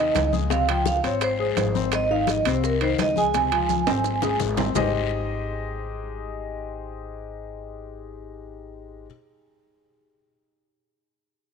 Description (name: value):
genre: Afro-Cuban jazz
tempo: 169 BPM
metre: 4/4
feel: straight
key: Ab major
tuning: A4 = 440 Hz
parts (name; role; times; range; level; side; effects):
- vibraphone with medium hard mallets; melody; 0.0-4.4 s; Bb4 to Ab5; -24 LUFS; right 6 dB; none
- warm concert grand piano; accompaniment; 0.0-9.1 s; C3 to Eb5; -28 LUFS; left 11 dB; none
- upright bass; bass; 0.0-9.1 s; Ab1 to Eb2; -30 LUFS; equal; none
- bongos; percussion; 0.1-4.8 s; none; -35 LUFS; left 13 dB; none
- guiro; percussion; 0.1-4.8 s; none; -39 LUFS; left 13 dB; none
- congas; percussion; 0.2-4.8 s; none; -32 LUFS; left 11 dB; none
- maracas; percussion; 0.2-4.8 s; none; -39 LUFS; right 14 dB; none
- timbales; percussion; 0.2-4.8 s; none; -31 LUFS; right 12 dB; none
room: light reverb, small room reverb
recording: 1960s-style stereo with parts hard left and right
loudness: -21 LUFS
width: side -6 dB against mid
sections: 0.0-4.8 A section; 4.8-7.6 B section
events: drum fill 3.3-4.8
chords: 0.0 Ab5; 0.5 Dbmaj7; 1.9 Ab; 3.3 Dbmaj7; 4.8 Abmaj7